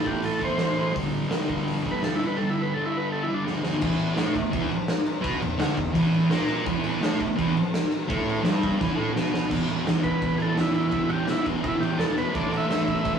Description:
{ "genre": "garage rock duo or trio", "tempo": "169 BPM", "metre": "4/4", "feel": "straight", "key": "E minor", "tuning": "A4 = 440 Hz", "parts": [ { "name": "combo organ", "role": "melody", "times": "0.0-3.5, 10.0-13.2 s", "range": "D4 to E5", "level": "-28 LUFS", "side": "right 1 dB", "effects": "none" }, { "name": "thick fuzz guitar", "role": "riff", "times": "0.0-13.2 s", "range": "E2 to D4", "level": "-25 LUFS", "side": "right 1 dB", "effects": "distortion" }, { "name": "oversized low-tuned drum kit", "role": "drums", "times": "0.1-13.1 s", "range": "crash cymbal, hi-hat, kick drum, snare drum", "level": "-27 LUFS", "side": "equal", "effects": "none" } ], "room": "moderate studio reverb, RT60 0.6 s", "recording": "rough rehearsal-room recording, warm saturation, small room ambience", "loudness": "-22 LUFS", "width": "side -7 dB against mid", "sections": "0.0-3.8 A section; 3.8-9.5 B section; 9.5-13.2 C section", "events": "drum fill 3.5-3.8, 8.8-9.5; transistor combo organ solo 9.5-13.2", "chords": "0.0 Am; 1.0 G5; 3.8 Em; 9.5 E5; 12.3 A5", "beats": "0.24 0.60 | 0.96 1.32 1.68 2.03 | 2.39 2.75 3.10 3.46 | 3.82 4.17 4.53 4.89 | 5.24 5.60 5.95 6.31 | 6.66 7.02 7.37 7.73 | 8.08 8.44 8.79 9.15 | 9.50 9.86 10.21 10.57 | 10.92 11.28 11.63 11.99 | 12.34 12.70 13.05" }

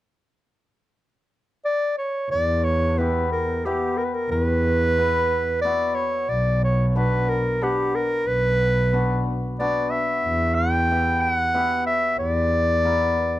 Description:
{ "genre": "klezmer", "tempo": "91 BPM", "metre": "3/4", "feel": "straight", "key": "E dorian sharp4", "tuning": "A4 = 440 Hz", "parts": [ { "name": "warm clarinet", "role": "melody", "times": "1.7-13.4 s", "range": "G4 to G5", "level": "-22 LUFS", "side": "equal", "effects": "none" }, { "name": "muted double bass", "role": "bass", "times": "2.3-13.4 s", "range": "B1 to E2", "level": "-24 LUFS", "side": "equal", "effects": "none" }, { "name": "cimbalom", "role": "accompaniment", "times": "3.0-13.2 s", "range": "B3 to F#5", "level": "-29 LUFS", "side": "left 4 dB", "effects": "none" } ], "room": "studio ambience", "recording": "dry, close 1970s-style studio recording", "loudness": "-20 LUFS", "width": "side -14 dB against mid", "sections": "0.3-2.3 A section; 2.3-13.4 B section", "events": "none", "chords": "0.3 N.C.; 2.3 Em; 6.3 Bm; 10.2 Em", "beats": "| 0.32 0.98 1.65 | 2.31 2.97 3.64 | 4.30 4.96 5.63 | 6.29 6.95 7.61 | 8.27 8.92 9.58 | 10.23 10.89 11.54 | 12.20 12.85" }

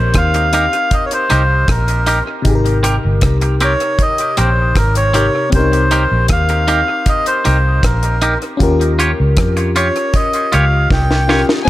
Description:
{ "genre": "lovers rock reggae", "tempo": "78 BPM", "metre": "4/4", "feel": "straight", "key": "unclear", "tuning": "A4 = 442 Hz", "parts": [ { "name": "melodica", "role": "melody", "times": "0.0-11.5 s", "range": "Bb4 to G5", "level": "-17 LUFS", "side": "equal", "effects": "dub echo" }, { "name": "FM electric piano", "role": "accompaniment", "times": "0.0-11.7 s", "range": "C3 to Bb4", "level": "-21 LUFS", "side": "left 3 dB", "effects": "chorus" }, { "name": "vintage muted fingered electric bass", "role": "bass", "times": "0.0-11.4 s", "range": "G1 to F2", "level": "-15 LUFS", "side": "equal", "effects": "none" }, { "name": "deep reggae drum kit", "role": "drums", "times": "0.1-11.7 s", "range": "crash cymbal, hi-hat, kick drum, rim click, snare drum", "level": "-17 LUFS", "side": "equal", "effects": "dub echo" }, { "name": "twangy electric guitar", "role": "stabs", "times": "0.3-11.4 s", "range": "C4 to Db5", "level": "-21 LUFS", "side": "right 2 dB", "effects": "dub echo" } ], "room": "light reverb, small room ambience", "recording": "none", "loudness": "-12 LUFS", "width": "side -15 dB against mid", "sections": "0.0-11.7 A section", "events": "drum fill 10.9-11.7", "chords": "0.0 Cm7; 2.5 Abmaj9; 5.5 Cm7; 8.6 Eb9", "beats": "0.14 0.91 1.68 | 2.45 3.22 3.99 4.76 | 5.53 6.30 7.07 7.83 | 8.60 9.37 10.14 10.91 | 11.68" }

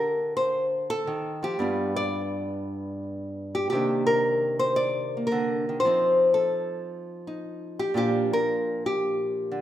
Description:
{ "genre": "solo jazz", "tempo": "114 BPM", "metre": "4/4", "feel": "swing 68% on 8ths, rubato", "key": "Bb major", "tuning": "A4 = 441 Hz", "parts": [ { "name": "nylon-string guitar", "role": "solo", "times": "0.0-9.6 s", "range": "G2 to D5", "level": "-24 LUFS", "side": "equal", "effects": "none" } ], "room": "wet recital hall reverb, RT60 1.3 s", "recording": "minimal, uncompressed stereo recording", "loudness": "-23 LUFS", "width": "side -12 dB against mid", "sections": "0.0-9.6 A section", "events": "none", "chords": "0.0 D7(no3); 1.6 G7; 3.7 Cm9; 5.8 F7; 7.9 Bb6", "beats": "0.01 0.54 1.06 | 1.59 2.12 2.65 3.18 | 3.72 4.25 4.79 5.32 | 5.84 6.37 6.90 7.42 | 7.95 8.47 8.99 9.51" }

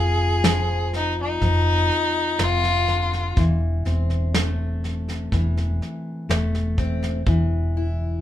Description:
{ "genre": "acoustic folk duo or small band", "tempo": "62 BPM", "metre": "4/4", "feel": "straight", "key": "unclear", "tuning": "A4 = 440 Hz", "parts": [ { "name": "clear fiddle", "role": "melody", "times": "0.0-3.4 s", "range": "Eb4 to Ab4", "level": "-22 LUFS", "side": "left 2 dB", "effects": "none" }, { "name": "fingerpicked steel-string acoustic guitar", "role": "accompaniment", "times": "0.0-8.2 s", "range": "F2 to F4", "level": "-27 LUFS", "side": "left 2 dB", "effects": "none" }, { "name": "hollow-body short-scale fingered electric bass", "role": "bass", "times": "0.0-8.2 s", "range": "E1 to F1", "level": "-22 LUFS", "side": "equal", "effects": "none" }, { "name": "soft brush drum kit", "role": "drums", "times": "0.4-7.5 s", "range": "kick drum, snare drum", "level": "-25 LUFS", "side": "equal", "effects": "none" } ], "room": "light reverb", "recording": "minimal, uncompressed stereo recording", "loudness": "-20 LUFS", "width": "side -12 dB against mid", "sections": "0.0-7.3 A section", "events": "fiddle solo 0.0-7.3", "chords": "0.0 Dm7/F; 3.4 Am/E; 7.3 N.C.", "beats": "0.45 1.43 2.40 | 3.38 4.35 5.33 6.30 | 7.27" }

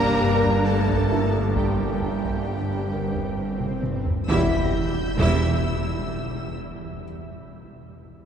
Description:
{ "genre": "cinematic, suspense film score", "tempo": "66 BPM", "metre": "3/4", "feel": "straight", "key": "E minor", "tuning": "A4 = 440 Hz", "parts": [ { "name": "warm symphonic violin section", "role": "melody", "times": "0.0-5.7 s", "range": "G5 to E6", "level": "-34 LUFS", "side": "left 1 dB", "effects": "none" }, { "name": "warm symphonic violin section", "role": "second line", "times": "0.0-5.7 s", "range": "G4 to E5", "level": "-32 LUFS", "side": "right 1 dB", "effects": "none" }, { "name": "warm symphonic viola section", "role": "accompaniment", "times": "0.0-5.7 s", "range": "G3 to E4", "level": "-31 LUFS", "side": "right 2 dB", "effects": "none" }, { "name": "mellow French horn section", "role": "sustained chords", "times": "0.0-4.7 s", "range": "G3 to E4", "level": "-29 LUFS", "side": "left 2 dB", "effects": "none" }, { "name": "concert harp", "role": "riff", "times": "0.0-6.4 s", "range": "G2 to G3", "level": "-32 LUFS", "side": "left 6 dB", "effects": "none" }, { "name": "rich symphonic cello section", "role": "bass", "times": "0.0-5.7 s", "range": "E2 to G2", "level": "-29 LUFS", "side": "right 3 dB", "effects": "none" }, { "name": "rich symphonic double bass section", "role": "bass", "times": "0.0-5.7 s", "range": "E1 to G1", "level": "-29 LUFS", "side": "right 3 dB", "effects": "none" }, { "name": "overtone-sweeping drone", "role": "drone", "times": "0.0-4.8 s", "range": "G1", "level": "-37 LUFS", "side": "equal", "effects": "chorus, built-in reverb" }, { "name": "felt-muted upright piano", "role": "texture", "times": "0.0-4.3 s", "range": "E4 to E5", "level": "-39 LUFS", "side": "equal", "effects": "none" }, { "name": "taiko ensemble", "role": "drums", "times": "0.4-7.0 s", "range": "none", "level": "-33 LUFS", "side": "equal", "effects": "none" }, { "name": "dark trombone section", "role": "sustained chords", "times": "1.6-4.7 s", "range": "B2 to G3", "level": "-40 LUFS", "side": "right 3 dB", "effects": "none" }, { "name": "swell and impact", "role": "sound effects", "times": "3.2-7.0 s", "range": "none", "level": "-34 LUFS", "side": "equal", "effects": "none" }, { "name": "timpani", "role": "percussion", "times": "4.3-5.6 s", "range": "E2", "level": "-30 LUFS", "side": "equal", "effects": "none" }, { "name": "rich symphonic violin section", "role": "texture", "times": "4.3-6.5 s", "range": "E6 to B6", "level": "-38 LUFS", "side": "left 3 dB", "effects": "none" } ], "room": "wet cathedral reverb, RT60 6.3 s", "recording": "dark, warm production", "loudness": "-21 LUFS", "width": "side -8 dB against mid", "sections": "0.0-4.3 A section; 4.3-7.0 B section", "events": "swell 3.2-4.3; drum fill 3.6-4.3; impact 4.3-7.0", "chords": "0.0 Gm; 4.3 Em", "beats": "0.66 | 1.57 2.48 3.39 | 4.30 5.21 6.11" }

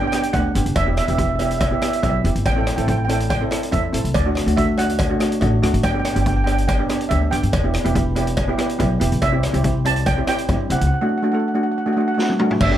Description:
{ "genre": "calypso", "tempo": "142 BPM", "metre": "4/4", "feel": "straight", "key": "unclear", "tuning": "A4 = 440 Hz", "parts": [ { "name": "steel pan", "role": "melody", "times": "0.0-12.8 s", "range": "D5 to A5", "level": "-24 LUFS", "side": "right 4 dB", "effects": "none" }, { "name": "steel pan", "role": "accompaniment", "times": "0.0-12.8 s", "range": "A3 to A4", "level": "-22 LUFS", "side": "right 1 dB", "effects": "none" }, { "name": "upright bass", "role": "bass", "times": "0.0-12.8 s", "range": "E1 to G2", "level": "-21 LUFS", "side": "left 1 dB", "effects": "none" }, { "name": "street-band drum kit", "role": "drums", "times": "0.1-12.7 s", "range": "crash cymbal, hi-hat, kick drum, rim click, snare drum, toms", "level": "-24 LUFS", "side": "left 1 dB", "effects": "none" }, { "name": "cowbell", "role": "percussion", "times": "0.1-12.7 s", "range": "none", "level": "-28 LUFS", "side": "equal", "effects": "none" } ], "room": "moderate small room reverb, RT60 0.5 s", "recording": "none", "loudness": "-17 LUFS", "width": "side -11 dB against mid", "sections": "0.0-12.6 A section", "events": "drum fill 12.2-12.6", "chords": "0.0 G; 0.8 Em; 2.5 Am7; 4.2 D; 5.8 G; 7.5 Em; 9.2 C; 10.9 D", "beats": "0.34 | 0.76 1.19 1.61 2.03 | 2.46 2.88 3.30 3.73 | 4.15 4.57 5.00 5.42 | 5.84 6.26 6.69 7.11 | 7.53 7.96 8.38 8.80 | 9.22 9.65 10.07 10.49 | 10.91 11.34 11.76 12.18 | 12.60" }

